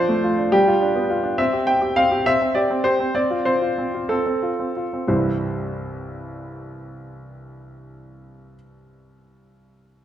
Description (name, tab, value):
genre	classical-period piano sonatina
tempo	59-70 BPM (dotted quarters)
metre	6/8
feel	straight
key	C major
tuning	A4 = 440 Hz
part	clear grand piano	solo	0.0-10.0 s	C2 to G5	-19 LUFS	equal	none
room	wet recital hall reverb, RT60 1.5 s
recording	none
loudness	-18 LUFS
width	side -11 dB against mid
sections	0.0-5.1 A section; 5.1-9.1 B section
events	slowing down 0.5-5.1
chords	0.0 Dm7/F; 0.5 G7; 1.4 C5; 3.2 F/C; 5.1 C